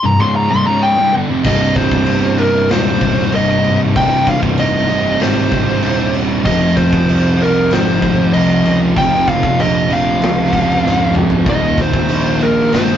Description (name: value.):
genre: stoner and doom metal.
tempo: 96 BPM.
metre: 4/4.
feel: straight.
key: C phrygian.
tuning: A4 = 440 Hz.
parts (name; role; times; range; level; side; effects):
fuzz lead guitar; melody; 0.0-13.0 s; Bb4 to C6; -17 LUFS; equal; distortion.
high-gain distorted guitar; riff; 0.0-13.0 s; C2 to F3; -22 LUFS; equal; distortion.
thick fuzz guitar; riff; 0.0-13.0 s; C2 to F3; -20 LUFS; left 4 dB; distortion.
thick fuzz guitar; riff; 0.0-13.0 s; C2 to F3; -18 LUFS; right 3 dB; distortion.
fuzz picked electric bass; bass; 1.4-13.0 s; C1 to Db2; -20 LUFS; equal; overdrive.
big rock drum kit; drums; 1.4-12.9 s; crash cymbal, kick drum, snare drum, toms; -19 LUFS; left 1 dB; none.
room: wet small room reverb, RT60 0.5 s.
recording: rough rehearsal-room recording, tube saturation, cassette tape, nothing above 7.6 kHz.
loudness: -11 LUFS.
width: side -10 dB against mid.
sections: 0.0-1.5 A section; 1.5-13.0 B section.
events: break 0.0-1.5; lead electric guitar solo 0.0-1.5; drum fill 10.8-11.5.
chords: 0.0 C5; 1.5 Cm; 6.5 F5; 11.5 Eb.